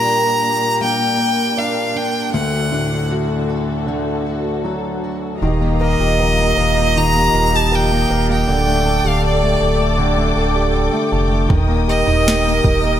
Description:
pop ballad; 79 BPM; 4/4; straight; A4 = 442 Hz
clear violin; melody; 0.0-13.0 s; D5 to Bb5; -18 LUFS; right 1 dB
clear concert grand piano; accompaniment; 0.0-13.0 s; D2 to Bb4; -21 LUFS; equal
warm studio string section; sustained chords; 0.0-13.0 s; D2 to Eb6; -24 LUFS; left 1 dB
picked plugged-in steel-string acoustic guitar; arpeggios; 0.0-13.0 s; Bb2 to Bb4; -24 LUFS; left 2 dB; ensemble chorus
sub bass with octave; bass; 5.4-13.0 s; D1 to F1; -19 LUFS; equal
smooth R&B drum kit; drums; 11.5-12.8 s; kick drum, snare drum, toms; -18 LUFS; right 1 dB; overdrive, gated reverb
light reverb, small room ambience; bright 1980s-style digital production; -14 LUFS; side -10 dB against mid
0.0-5.4 A section; 5.4-13.0 B section
0.0 Gm/Bb; 2.3 D; 5.4 Ebadd9; 8.5 Dsus4; 11.5 Eb

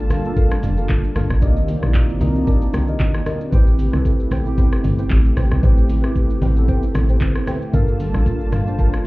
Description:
amapiano; 114 BPM; 4/4; swing 55% on 16ths; A phrygian; A4 = 439 Hz
mellow tine electric piano; accompaniment; 0.0-9.1 s; Bb3 to Bb5; -25 LUFS; equal; fast stereo tremolo
warm analog pad; sustained chords; 0.0-9.1 s; C3 to A5; -28 LUFS; equal; chorus
deep mellow chord stab; stabs; 0.0-8.9 s; A4 to A5; -31 LUFS; left 1 dB; chorus, digital delay
deep log drum bass; bass; 0.0-8.9 s; F1 to C2; -18 LUFS; equal
smooth R&B drum kit; drums; 0.1-9.0 s; handclaps, hi-hat, kick drum, rim click, shaker; -18 LUFS; equal
congas; percussion; 0.1-8.9 s; -27 LUFS; equal
little or no reverb; heard muffled through a wall, club reverb, EQ; -15 LUFS; side -20 dB against mid
0.0-9.1 A section
tine electric piano fill 1.9-3.5
0.0 Gm9; 1.4 Cm9; 3.5 Am9; 7.7 Gm9

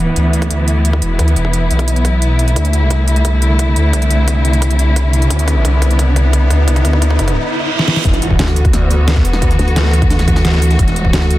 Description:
dark technical drum and bass; 175 BPM; 4/4; straight; A4 = 440 Hz
dark chamber string section; sustained chords; 0.0-11.4 s; D3 to F#4; -18 LUFS; equal; sidechain pumping, low-pass filter
phased detuned saw bass; bass; 0.0-11.1 s; E1 to D2; -13 LUFS; equal; phaser, overdrive
riser, reverse cymbal and impact; sound effects; 1.0-9.4 s; -24 LUFS; equal
dubstep drum kit; drums; 0.2-11.4 s; hi-hat, snare drum; -20 LUFS; equal; soft clipping on snare, small room ambience
electronic kick drum; drums; 0.4-11.1 s; -17 LUFS; equal; high-pass filter on kick, small room ambience
breakbeat sampler-style drum kit; drums; 8.0-11.4 s; hi-hat, snare drum; -28 LUFS; left 1 dB
vowel-sweep wobble bass; bass; 8.4-11.4 s; D2; -13 LUFS; equal; chorus
light reverb; dense, heavily limited modern master; -11 LUFS; side -16 dB against mid
0.0-8.0 A section; 8.0-11.4 B section
build-up 0.0-8.0; riser 1.0-8.0; drum fill 2.6-7.4, 7.8; break 7.4-8.0; reverse cymbal 7.4-8.0; drop 8.0-11.4; impact 8.0-9.4
0.0 E5; 2.6 D5; 8.0 E5

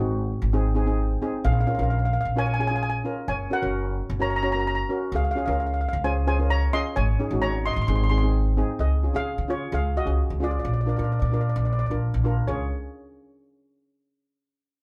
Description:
calypso; 131 BPM; 4/4; straight; Db major; A4 = 443 Hz
steel pan; melody; 0.0-12.7 s; F4 to C6; -30 LUFS; equal; plate reverb
steel pan; accompaniment; 0.0-12.7 s; C4 to Db5; -32 LUFS; equal
upright bass; bass; 0.0-12.7 s; Gb1 to Db3; -26 LUFS; equal
wet small room ambience, RT60 0.5 s; heard from further back in the room; -24 LUFS; mono
0.0-8.8 A section; 8.8-12.5 B section; 12.5-14.3 C section
0.0 Ab; 1.4 Bbm7; 3.3 Gb; 5.1 Dbmaj7; 7.0 Absus4; 7.9 Ab; 8.8 Db; 10.6 Bb; 12.5 Db

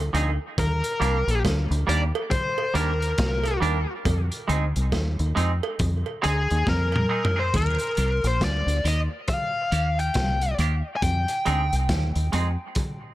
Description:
dub reggae; 69 BPM; 4/4; swing 60% on 16ths; Eb major; A4 = 438 Hz
deep dub fingered electric bass; bass; 0.0-12.6 s; Bb1 to F2; -24 LUFS; equal
semi-hollow electric guitar; accompaniment; 0.1-12.5 s; Eb3 to Ab4; -30 LUFS; right 4 dB; lush chorus, high-pass filter, dub echo
crunchy breakbeat drum kit; drums; 0.1-13.0 s; hi-hat, kick drum, snare drum, toms; -28 LUFS; equal
smooth overdriven lead guitar; melody; 0.6-11.7 s; Ab4 to Ab5; -27 LUFS; left 2 dB; dub echo
cowbell and jawbone-type rattle; percussion; 0.6-7.8 s; -35 LUFS; right 5 dB; high-pass filter on perc, dub echo
light reverb, small room ambience; -22 LUFS; side -15 dB against mid
0.0-13.1 A section
filter sweep 4.1-11.0; drum fill 6.7-7.5; part muted 7.5-13.1
0.0 Fm7; 0.6 Ebmaj7; 4.1 Fm7; 7.5 Ebmaj7; 11.0 Fm7

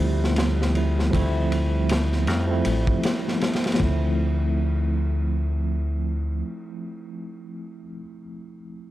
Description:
trip hop; 79 BPM; 4/4; swing 59% on 16ths; A4 = 438 Hz
tine electric piano; accompaniment; 0.0-8.9 s; F3 to E4; -27 LUFS; right 1 dB; medium stereo tremolo, harmonic tremolo, tape echo
dark analog pad; sustained chords; 0.0-3.8 s; G3 to G4; -35 LUFS; equal
deep dub fingered electric bass; bass; 0.0-6.4 s; A1 to F2; -23 LUFS; equal
crunchy breakbeat drum kit; drums; 0.2-4.0 s; kick drum, ride cymbal, snare drum; -26 LUFS; equal
studio reverb; dark, warm production; -21 LUFS; side -15 dB against mid
0.0-4.2 A section; 4.2-7.2 B section
0.0 Dm7

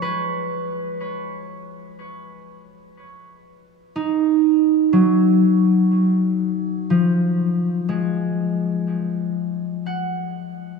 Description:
ambient; 61 BPM; 3/4; straight; G# dorian; A4 = 440 Hz
concert harp; solo; 0.0-10.8 s; E#3 to F#5; -18 LUFS; equal; tape echo
wet cathedral reverb, RT60 5.3 s; small room ambience; -17 LUFS; side -5 dB against mid
0.0-10.8 A section
0.0 G#m7; 8.9 N.C.

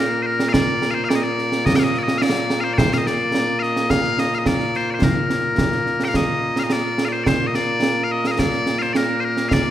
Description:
scottish traditional, Scottish pipe music; 107 BPM; 4/4; straight; Bb major; A4 = 441 Hz
loud bright bagpipes; melody; 0.0-9.7 s; Bb2 to G5; -20 LUFS; left 1 dB
concert snare drum and concert bass drum; drums; 0.4-9.6 s; -21 LUFS; right 2 dB
moderate concert hall reverb, RT60 1.8 s; recorded in a church or concert hall; -17 LUFS; side -12 dB against mid
0.0-6.1 A section; 6.1-9.7 A section

